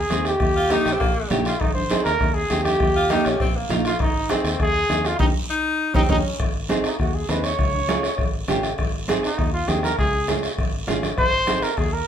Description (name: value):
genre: latin, cumbia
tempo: 200 BPM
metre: 4/4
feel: straight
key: Ab major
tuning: A4 = 440 Hz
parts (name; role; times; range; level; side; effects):
- breathy trumpet; melody; 0.0-12.1 s; C4 to Db5; -23 LUFS; equal; none
- fingered electric bass; bass; 0.0-12.0 s; Ab1 to Eb2; -28 LUFS; left 1 dB; none
- nylon-string guitar; accompaniment; 0.1-11.7 s; Bb3 to Ab4; -25 LUFS; right 3 dB; none
- bombo; percussion; 0.1-11.9 s; none; -24 LUFS; left 1 dB; none
- congas; percussion; 0.1-11.9 s; none; -31 LUFS; right 3 dB; none
- guiro; percussion; 0.1-12.1 s; none; -34 LUFS; right 4 dB; none
- edgy tenor saxophone; second line; 0.6-6.4 s; Bb3 to F4; -24 LUFS; left 2 dB; none
room: moderate studio reverb, RT60 0.6 s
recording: band playing live in one room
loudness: -19 LUFS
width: side -9 dB against mid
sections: 0.0-6.4 A section; 6.4-12.1 B section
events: band accent 5.2-6.4; trumpet solo 6.4-12.1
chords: 0.4 Eb; 1.6 Ab; 2.8 Eb; 4.0 Ab; 5.2 Eb7; 6.4 Ab; 7.6 Db; 8.8 Ab; 10.0 Db; 11.2 Ab